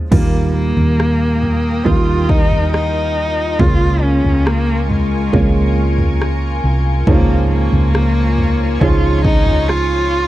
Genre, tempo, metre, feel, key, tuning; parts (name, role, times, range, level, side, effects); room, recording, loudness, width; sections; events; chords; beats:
pop ballad; 69 BPM; 4/4; straight; A4 = 440 Hz
clear upright piano; accompaniment; 0.0-10.3 s; Ab2 to F4; -21 LUFS; right 5 dB
rich cello; melody; 0.1-10.3 s; Ab3 to F4; -18 LUFS; left 1 dB; slapback echo
shimmering ambient pad; sustained chords; 0.9-10.3 s; F4 to Eb6; -26 LUFS; left 3 dB; chorus, built-in reverb
hollow-body short-scale fingered electric bass; bass; 0.1-10.3 s; C2 to Eb2; -16 LUFS; equal
punchy analog drum machine; drums; 0.1-9.9 s; crash cymbal, kick drum, rim click, toms; -17 LUFS; equal
little or no reverb; dry, close 1970s-style studio recording; -12 LUFS; side -15 dB against mid
0.1-10.3 A section
0.1 Ebadd9; 3.6 Bbm7/Db; 7.1 Db
| 0.12 0.99 1.85 2.73 | 3.60 4.46 5.33 6.20 | 7.07 7.94 8.81 9.68